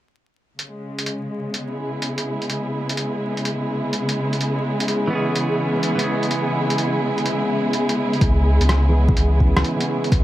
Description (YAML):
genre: future garage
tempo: 126 BPM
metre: 4/4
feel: swing 67% on 16ths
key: unclear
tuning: A4 = 440 Hz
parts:
  - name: warm studio string section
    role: sustained chords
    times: 0.6-10.2 s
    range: Db3 to Ab4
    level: -22 LUFS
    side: equal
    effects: sidechain pumping
  - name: lo-fi sampler-style drum kit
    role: drums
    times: 0.6-10.2 s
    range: hi-hat, rim click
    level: -25 LUFS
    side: equal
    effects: none
  - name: clean electric guitar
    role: accompaniment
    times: 5.1-10.2 s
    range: Fb3 to Ab4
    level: -25 LUFS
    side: right 1 dB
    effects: vintage 12-bit sampler grit, sidechain pumping, low-pass filter, analog delay
  - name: warm sub bass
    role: bass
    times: 8.2-10.2 s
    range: Db2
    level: -17 LUFS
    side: equal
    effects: sidechain pumping
  - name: electronic kick drum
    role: drums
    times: 8.2-10.2 s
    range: none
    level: -18 LUFS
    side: equal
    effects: none
room: light reverb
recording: echo-heavy mix, vinyl crackle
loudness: -18 LUFS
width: side -14 dB against mid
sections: 0.6-8.2 A section; 8.2-10.2 B section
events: filter sweep on clean electric guitar 8.2-10.2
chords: 0.6 Dbm7